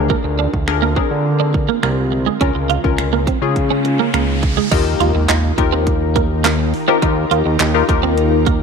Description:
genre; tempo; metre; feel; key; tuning
dance-pop; 104 BPM; 4/4; straight; Eb major; A4 = 439 Hz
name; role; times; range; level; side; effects
funky polysynth comp; accompaniment; 0.0-8.6 s; Db4 to Bb4; -20 LUFS; left 11 dB; chorus, sidechain pumping
ethereal airy pad; sustained chords; 0.0-8.6 s; Db3 to Bb4; -24 LUFS; equal; ensemble chorus, built-in reverb, phaser, sidechain pumping
fat analog bass; bass; 0.0-8.6 s; C2 to D3; -18 LUFS; right 1 dB; sidechain pumping
downlifter, riser and impact; sound effects; 3.3-7.0 s; none; -30 LUFS; right 1 dB; none
twelve-string electric guitar; riff; 0.1-8.6 s; Ab3 to F4; -20 LUFS; right 15 dB; ensemble chorus
house drum kit; drums; 0.1-8.6 s; crash cymbal, finger snaps, handclaps, hi-hat, kick drum, snare drum; -20 LUFS; right 1 dB; none
room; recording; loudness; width
light reverb, digital ambience; 1960s-style stereo with parts hard left and right; -14 LUFS; side -5 dB against mid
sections
0.0-4.7 A section; 4.7-8.6 B section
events
riser 3.3-4.7; impact 4.7-7.0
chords
0.0 Bb7/D; 2.4 Db6; 4.7 Ebadd9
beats
| 0.10 0.68 1.25 1.83 | 2.41 2.98 3.56 4.14 | 4.71 5.29 5.87 6.45 | 7.02 7.60 8.18

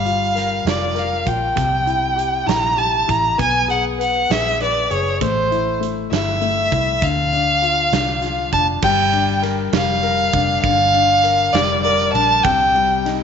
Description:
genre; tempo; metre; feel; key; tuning
six-eight pop ballad; 66 BPM (dotted quarters); 6/8; straight; G minor; A4 = 439 Hz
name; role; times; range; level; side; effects
warm violin; melody; 0.0-13.0 s; C5 to Bb5; -17 LUFS; right 1 dB; none
clear concert grand piano; accompaniment; 0.0-13.2 s; C3 to B4; -23 LUFS; left 11 dB; none
vintage muted fingered electric bass; bass; 0.0-13.2 s; F1 to D2; -25 LUFS; right 1 dB; none
huge arena drum kit; drums; 0.1-13.2 s; crash cymbal, hi-hat, kick drum, ride cymbal, snare drum; -25 LUFS; right 7 dB; none
room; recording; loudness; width
moderate echo chamber reverb, RT60 2.1 s; 1960s-style stereo with parts hard left and right, nothing above 7.7 kHz; -15 LUFS; side -7 dB against mid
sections
0.0-8.8 A section; 8.8-13.2 B section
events
none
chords
0.0 Gm7; 1.6 C; 3.4 F#sus4; 5.2 Am; 7.0 Dm; 8.8 Gm7; 12.4 Cm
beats
0.67 | 1.57 2.48 | 3.39 4.30 | 5.21 6.11 | 7.02 7.92 | 8.83 9.73 | 10.64 11.54 | 12.44

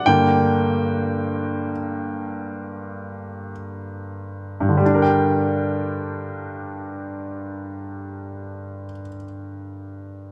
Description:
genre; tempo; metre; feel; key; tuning
pop; free time; none; none; G minor; A4 = 441 Hz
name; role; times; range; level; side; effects
bright grand piano; accompaniment; 0.0-10.3 s; G2 to G5; -24 LUFS; equal; none
room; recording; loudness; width
moderate echo chamber reverb, RT60 2.5 s; none; -23 LUFS; mono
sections
0.0-4.8 A section; 4.8-9.9 B section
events
slowing down 0.0-4.8; grand piano solo 0.0-4.8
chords
0.1 Gm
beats
free time

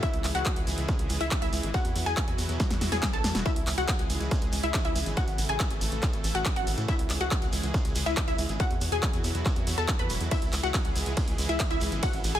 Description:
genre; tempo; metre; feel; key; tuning
uplifting trance; 140 BPM; 4/4; straight; C# minor; A4 = 440 Hz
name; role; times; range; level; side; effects
wide unison pluck; melody; 0.0-12.4 s; E4 to B5; -33 LUFS; left 2 dB; auto-pan, sidechain pumping, digital delay
wide unison pluck; second line; 0.0-12.4 s; E5 to B5; -39 LUFS; equal; sidechain pumping, dub echo
supersaw pad; sustained chords; 0.0-12.4 s; B2 to A4; -36 LUFS; right 1 dB; sidechain pumping
electronic kick drum; drums; 0.0-12.1 s; none; -28 LUFS; equal; distortion, overdrive, studio ambience
punchy analog drum machine; drums; 0.0-12.4 s; handclaps, hi-hat, ride cymbal, snare drum; -34 LUFS; equal; overdrive, studio ambience
shekere; percussion; 0.0-12.4 s; none; -39 LUFS; right 2 dB; none
tight sequencer bass; bass; 0.1-12.4 s; E1 to A2; -31 LUFS; equal; sidechain pumping
room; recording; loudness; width
digital ambience; none; -25 LUFS; side -11 dB against mid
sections
0.0-12.4 A section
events
drum fill 2.6-3.5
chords
0.0 C#m; 1.7 Esus2; 3.5 C#m; 5.2 A; 6.9 C#m; 8.6 Esus2; 10.3 C#m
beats
| 0.03 0.46 0.88 1.31 | 1.74 2.17 2.60 3.03 | 3.46 3.88 4.31 4.74 | 5.17 5.60 6.03 6.46 | 6.88 7.31 7.74 8.17 | 8.60 9.03 9.46 9.88 | 10.31 10.74 11.17 11.60 | 12.03

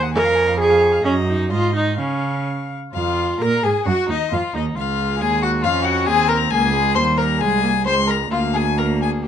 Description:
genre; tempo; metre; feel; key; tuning
quick classical-period movement for string quartet; 123-137 BPM; 2/4; rubato; Db major; A4 = 440 Hz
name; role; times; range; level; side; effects
rich violin; melody; 0.0-9.3 s; Eb5 to F6; -24 LUFS; left 10 dB; none
dark violin; second line; 0.0-9.3 s; Eb4 to Ab5; -23 LUFS; left 4 dB; none
rich cello; bass; 0.0-9.3 s; C2 to Db3; -22 LUFS; right 3 dB; none
warm viola; accompaniment; 0.2-9.3 s; G3 to Bb4; -21 LUFS; right 1 dB; none
room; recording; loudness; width
light reverb; nothing above 10.7 kHz; -16 LUFS; side -9 dB against mid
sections
0.0-2.9 A section; 2.9-9.3 B section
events
none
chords
0.1 Db/F; 1.1 Ebm/Gb; 1.5 Ab; 2.0 Db; 2.9 Fmadd11; 3.9 Ebmadd9; 4.8 Db; 5.6 Db/F; 6.5 Bbm7/Db; 7.0 Eb; 7.4 Ab/C; 7.9 Bbm7/Db; 8.3 Bb/D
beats
| 0.15 0.60 | 1.05 1.51 | 1.98 2.46 | 2.94 3.40 | 3.86 4.31 | 4.76 5.20 | 5.64 6.08 | 6.53 6.98 | 7.42 7.87 | 8.32 8.79 | 9.26

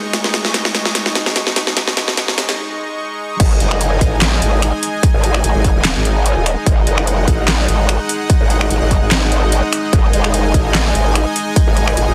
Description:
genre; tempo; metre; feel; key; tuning
heavy wobble dubstep; 147 BPM; 4/4; swing 53% on 16ths, half-time; unclear; A4 = 440 Hz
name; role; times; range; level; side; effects
supersaw pad; sustained chords; 0.0-12.1 s; G#3 to C#6; -23 LUFS; equal; sidechain pumping
dubstep drum kit; drums; 0.1-12.1 s; crash cymbal, finger snaps, handclaps, hi-hat, snare drum; -20 LUFS; equal; overdrive, high-pass filter on snare, high-pass filter on hats, high-pass filter on cymbals, high-pass filter on room
growl bass; bass; 3.4-12.1 s; D#1 to A1; -18 LUFS; equal; chorus, overdrive
electronic kick drum; drums; 3.4-11.7 s; none; -16 LUFS; equal; overdrive
room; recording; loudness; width
light reverb; dense, heavily limited modern master, high-pass filter; -15 LUFS; mono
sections
0.0-3.4 A section; 3.4-12.1 B section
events
build-up 0.0-3.4; drum fill 0.0-2.6; break 2.6-3.4; drop 3.4-12.1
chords
0.0 G#5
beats
| 0.13 0.54 0.95 1.36 | 1.77 2.17 2.58 2.99 | 3.40 3.81 4.22 4.62 | 5.03 5.44 5.85 6.26 | 6.66 7.07 7.48 7.89 | 8.30 8.71 9.11 9.52 | 9.93 10.34 10.75 11.15 | 11.56 11.97

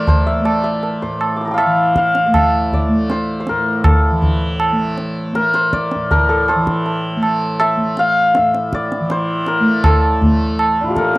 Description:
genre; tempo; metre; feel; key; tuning
indian classical, Hindustani; 80 BPM; 4/4; straight; A raga bhairavi; A4 = 440 Hz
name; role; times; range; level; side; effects
santur; melody; 0.0-11.2 s; D4 to D6; -17 LUFS; left 1 dB; cassette tape
tanpura; drone; 0.0-11.2 s; A2 to A3; -20 LUFS; equal; cassette tape
tabla; percussion; 0.1-11.2 s; none; -16 LUFS; right 1 dB; none
room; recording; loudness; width
wet booth ambience, RT60 0.2 s; home recording on cassette; -13 LUFS; side -20 dB against mid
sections
0.0-11.2 A section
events
none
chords
none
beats
0.08 | 0.84 1.59 2.35 3.10 | 3.85 4.61 5.36 6.11 | 6.86 7.61 8.36 9.10 | 9.85 10.60

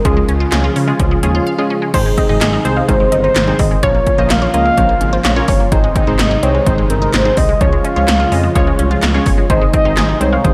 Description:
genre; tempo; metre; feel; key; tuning
synth-pop; 127 BPM; 4/4; straight; Ab major; A4 = 440 Hz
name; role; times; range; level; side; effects
mellow horn-like synth lead; melody; 0.0-10.5 s; Ab4 to F5; -20 LUFS; equal; chorus
brassy analog pad; sustained chords; 0.0-10.5 s; C3 to F4; -23 LUFS; equal; chorus
resonant blip pluck; arpeggios; 0.0-10.5 s; Eb3 to F5; -27 LUFS; equal; phaser, analog delay
funky polysynth comp; accompaniment; 0.1-10.5 s; Ab3 to Eb5; -23 LUFS; equal; chorus
smooth synth bass; bass; 0.1-10.5 s; G1 to Db3; -20 LUFS; equal; none
80s electronic pad drums; drums; 0.1-10.5 s; crash cymbal, handclaps, hi-hat, kick drum, snare drum; -18 LUFS; equal; overdrive, gated reverb
soft round pluck; second line; 1.9-5.6, 9.5-10.4 s; C5 to Ab5; -24 LUFS; equal; chorus, analog delay
room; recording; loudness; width
light reverb, digital ambience; none; -14 LUFS; mono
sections
0.0-1.9 A section; 1.9-10.5 B section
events
break 1.5-1.9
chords
0.1 Db; 1.9 Ab; 3.8 Bbm; 5.7 Ab; 7.6 Db; 9.5 Ab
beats
| 0.05 0.52 0.99 1.47 | 1.94 2.41 2.88 3.36 | 3.83 4.30 4.77 5.25 | 5.72 6.19 6.66 7.14 | 7.61 8.08 8.55 9.03 | 9.50 9.97 10.44

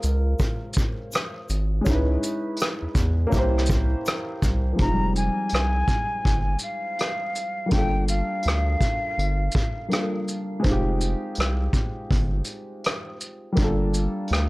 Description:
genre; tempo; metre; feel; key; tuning
lo-fi hip hop; 82 BPM; 4/4; swing 63% on 16ths; F dorian from 4.8 s; A4 = 436 Hz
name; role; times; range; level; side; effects
dark upright piano; accompaniment; 0.0-14.5 s; F3 to C5; -28 LUFS; equal; cassette tape, low-pass filter, plate reverb
round analog bass; bass; 0.0-14.5 s; F1 to Fb2; -23 LUFS; equal; none
vintage brush drum kit; drums; 0.0-14.5 s; hi-hat, kick drum, rim click, shaker; -25 LUFS; equal; none
tube shaker; percussion; 0.0-4.6 s; none; -43 LUFS; left 2 dB; none
breathy jazz flute; melody; 4.8-10.1 s; F5 to Bb5; -28 LUFS; left 1 dB; low-pass filter, tape echo
room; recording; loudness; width
little or no reverb; dry, gritty hardware recording; -22 LUFS; side -21 dB against mid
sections
0.0-4.8 A section; 4.8-14.5 B section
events
break 0.0-1.9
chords
0.0 Bbm9; 1.9 Dbm9; 3.3 C7b9; 4.8 Fm9; 7.7 Gm9; 10.6 Fm9; 13.6 Gm9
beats
0.40 1.13 | 1.86 2.59 3.32 4.05 | 4.79 5.52 6.25 6.98 | 7.71 8.45 9.18 9.91 | 10.64 11.37 12.10 12.84 | 13.57 14.30

